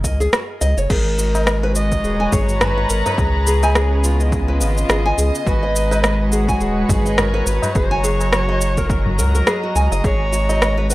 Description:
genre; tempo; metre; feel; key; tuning
organic downtempo; 105 BPM; 4/4; swing 57% on 16ths; G# dorian; A4 = 440 Hz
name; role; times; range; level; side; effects
nylon-string guitar; arpeggios; 0.0-10.9 s; E#4 to G#5; -24 LUFS; equal; tape echo, shimmer reverb
round analog bass; bass; 0.0-10.9 s; D#1 to C#2; -19 LUFS; equal; sidechain pumping
deep house drum kit; drums; 0.0-10.9 s; crash cymbal, rim click, shaker; -21 LUFS; equal; overdrive, studio ambience
electronic kick drum; drums; 0.0-10.2 s; none; -21 LUFS; equal; overdrive, studio ambience
tabla; percussion; 0.6-10.7 s; none; -27 LUFS; left 1 dB; none
dark kamancheh; melody; 0.9-10.9 s; F#4 to D#5; -24 LUFS; right 1 dB; analog delay, shimmer reverb
dark studio string section; sustained chords; 0.9-10.9 s; C#3 to A#5; -23 LUFS; equal; sidechain pumping, shimmer reverb
room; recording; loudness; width
light reverb, small room ambience; dry, gritty hardware recording; -15 LUFS; side -18 dB against mid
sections
0.0-10.9 A section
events
none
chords
0.0 F#5; 0.9 G#m11; 3.2 C#9; 5.5 G#m11; 7.8 F#6; 10.0 G#m11

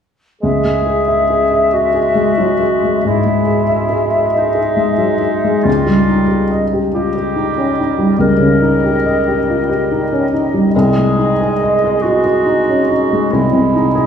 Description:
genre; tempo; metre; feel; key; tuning
classical, romantic movement for piano and orchestra; 46 BPM (dotted quarters); 12/8; rubato; C# minor; A4 = 440 Hz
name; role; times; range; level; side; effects
warm baby grand piano; melody; 0.4-14.1 s; B#1 to E5; -14 LUFS; left 1 dB; none
silver concert flute; second line; 0.4-14.1 s; D#5 to E5; -20 LUFS; equal; none
warm clarinet; second line; 0.4-14.1 s; D#4 to A#4; -20 LUFS; right 1 dB; none
clear bassoon; accompaniment; 0.4-14.1 s; G3 to G#3; -21 LUFS; right 4 dB; none
room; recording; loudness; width
wet recital hall reverb, RT60 1.3 s; heard from further back in the room; -12 LUFS; side -8 dB against mid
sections
0.4-14.1 A section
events
none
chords
0.4 C#m; 5.7 D#7/C#; 10.7 G#/B#

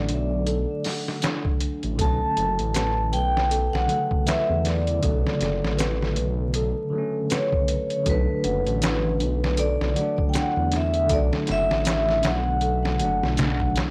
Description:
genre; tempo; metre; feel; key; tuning
trip hop; 79 BPM; 4/4; swing 58% on 16ths; unclear; A4 = 439 Hz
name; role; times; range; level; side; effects
vibraphone with medium mallets; melody; 0.0-13.7 s; B4 to A5; -28 LUFS; equal; tape echo
bell-like tine electric piano; accompaniment; 0.0-13.9 s; C#3 to D4; -33 LUFS; equal; harmonic tremolo, tape echo
celesta; arpeggios; 0.0-13.9 s; D4 to F#5; -34 LUFS; equal; tape echo
dark detuned saw bass; bass; 0.0-13.9 s; F#1 to E2; -28 LUFS; equal; none
trip hop sampler-style drum kit; drums; 0.1-13.9 s; hi-hat, kick drum, snare drum; -29 LUFS; equal; none
maracas; percussion; 1.2-13.6 s; none; -40 LUFS; equal; none
room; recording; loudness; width
small room reverb; dry, gritty hardware recording, vinyl crackle; -24 LUFS; mono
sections
0.0-13.9 A section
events
none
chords
0.0 D; 2.0 Bm9; 8.1 D

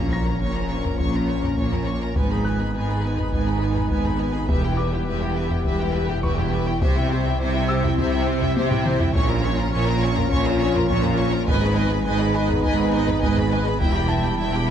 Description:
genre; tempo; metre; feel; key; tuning
cinematic, hybrid orchestral and electronic film score; 103 BPM; 4/4; straight; unclear; A4 = 440 Hz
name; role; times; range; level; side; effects
warm studio violin section; melody; 0.0-14.7 s; E5 to Db6; -31 LUFS; left 3 dB; none
warm symphonic violin section; second line; 0.0-14.7 s; G4 to G5; -30 LUFS; left 3 dB; none
warm symphonic viola section; accompaniment; 0.0-14.7 s; Bb3 to Cb5; -30 LUFS; right 2 dB; none
hollow soft pad; sustained chords; 0.0-14.7 s; F3 to Cb5; -30 LUFS; left 1 dB; chorus
mellow French horn section; sustained chords; 0.0-14.7 s; G3 to G4; -28 LUFS; left 2 dB; none
dark detuned saw bass; bass; 0.0-14.7 s; E1 to C2; -29 LUFS; equal; none
rich symphonic cello section; bass; 0.0-14.7 s; E2 to C3; -27 LUFS; right 3 dB; none
warm studio double bass section; bass; 0.0-14.7 s; E1 to C2; -27 LUFS; right 4 dB; none
sub drop; sound effects; 0.0-2.2 s; none; -30 LUFS; left 1 dB; none
felt-muted upright piano; texture; 0.1-14.7 s; A5 to Bb6; -35 LUFS; left 1 dB; ping-pong delay
solo taiko drums; drums; 0.9-14.4 s; none; -26 LUFS; equal; none
room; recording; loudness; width
moderate scoring stage reverb, RT60 1.9 s; dark, warm production; -19 LUFS; side -9 dB against mid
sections
0.0-14.7 A section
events
impact 0.0-2.2; drum fill 8.6-9.2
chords
0.0 Bbm; 2.2 Abm; 4.5 Em; 6.8 C; 9.2 Bbm; 11.5 Abm; 13.8 Em

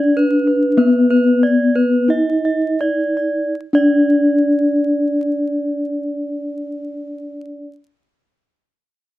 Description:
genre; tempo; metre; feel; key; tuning
gamelan; 40-50 BPM; 4/4; straight; unclear; A4 = 436 Hz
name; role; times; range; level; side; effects
gamelan-type bronze metallophone; melody; 0.0-7.7 s; B3+20c to E4-50c; -16 LUFS; left 1 dB; none
gamelan-type bronze metallophone; arpeggios; 0.0-7.7 s; B4+20c to E5-50c; -21 LUFS; right 2 dB; none
room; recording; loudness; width
moderate studio reverb, RT60 0.6 s; vinyl crackle; -14 LUFS; side -16 dB against mid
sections
0.0-3.5 A section; 3.5-9.2 B section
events
slowing down 0.0-3.5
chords
none

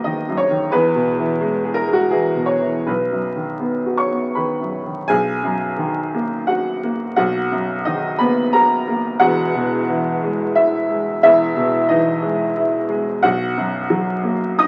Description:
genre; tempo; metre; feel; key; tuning
neoclassical minimalist piano; 79-91 BPM; 3/4; rubato; B major; A4 = 439 Hz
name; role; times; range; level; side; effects
warm upright piano; solo; 0.0-14.7 s; E1 to D#6; -19 LUFS; equal; none
room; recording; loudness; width
moderate studio reverb, RT60 0.8 s; very old 78 rpm record, vinyl crackle; -19 LUFS; mono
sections
0.0-5.1 A section; 5.1-14.7 B section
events
none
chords
0.0 Bmaj7; 0.7 E; 2.9 B; 5.1 Bmaj7; 9.2 E; 13.2 Bmaj7

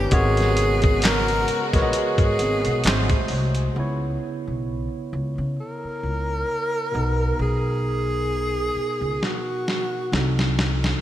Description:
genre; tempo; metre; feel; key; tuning
R&B, neo-soul; 66 BPM; 4/4; swing 56% on 16ths; C# dorian; A4 = 440 Hz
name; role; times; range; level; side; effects
breathy tenor saxophone; melody; 0.0-10.6 s; F#4 to A#4; -25 LUFS; equal; none
barky tine electric piano; accompaniment; 0.0-11.0 s; B2 to D#5; -28 LUFS; moving between equal and right 6 dB; overdrive, auto-pan
warm studio string section; sustained chords; 0.0-3.7 s; B#2 to G#4; -31 LUFS; left 2 dB; none
upright bass; bass; 0.0-10.9 s; G#1 to C#3; -24 LUFS; equal; none
dusty soul sampler-style drum kit; drums; 0.1-3.7, 9.2-11.0 s; handclaps, hi-hat, kick drum, snare drum; -23 LUFS; equal; gated reverb
room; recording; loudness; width
moderate lush hall reverb, RT60 3.1 s; bright 1980s-style digital production; -20 LUFS; side -12 dB against mid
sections
0.0-3.8 A section; 3.8-11.0 B section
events
drum fill 9.2-11.0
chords
0.1 G#m11; 2.8 G#7b9; 3.8 C#m7; 6.9 Bmaj7; 10.1 Cdim7

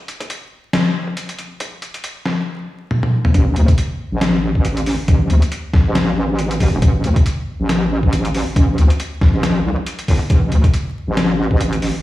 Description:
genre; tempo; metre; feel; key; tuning
deep dubstep; 138 BPM; 4/4; swing 56% on 16ths, half-time; unclear; A4 = 440 Hz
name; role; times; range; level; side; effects
trip hop sampler-style drum kit; drums; 0.1-11.9 s; hi-hat, snare drum, toms; -21 LUFS; left 1 dB; overdrive, small room ambience
electronic kick drum; drums; 0.2-11.6 s; none; -15 LUFS; equal; overdrive, high-pass filter on kick, small room ambience
wobble bass; bass; 3.3-11.9 s; E1 to D2; -16 LUFS; equal; chorus
room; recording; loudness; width
light reverb; played on a big sound system in a bare room, large studio reverb, vinyl crackle, small room ambience; -14 LUFS; side -16 dB against mid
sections
0.0-3.3 A section; 3.3-12.0 B section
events
build-up 0.0-3.3; drum fill 2.9-3.3; drop 3.3-12.0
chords
none

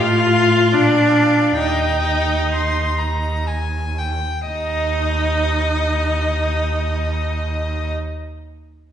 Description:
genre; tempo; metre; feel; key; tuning
classical, slow romantic movement for string quartet; 58-84 BPM; 3/4; rubato; Eb major; A4 = 440 Hz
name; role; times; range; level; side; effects
rich violin; melody; 0.0-7.9 s; D5 to F5; -26 LUFS; left 5 dB; none
clear violin; second line; 0.0-7.9 s; Eb5 to C6; -25 LUFS; left 2 dB; none
rich viola; accompaniment; 0.0-7.9 s; D4 to F4; -19 LUFS; equal; none
rich cello; bass; 0.0-7.9 s; Eb2 to Bb2; -21 LUFS; right 2 dB; none
room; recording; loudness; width
wet recital hall reverb, RT60 1.4 s; recorded in a church or concert hall, nothing above 10.3 kHz; -16 LUFS; side -9 dB against mid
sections
0.0-4.5 A section; 4.5-8.9 B section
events
slowing down 0.0-4.5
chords
0.0 F/A; 0.7 Bb; 1.6 Eb; 4.5 N.C.

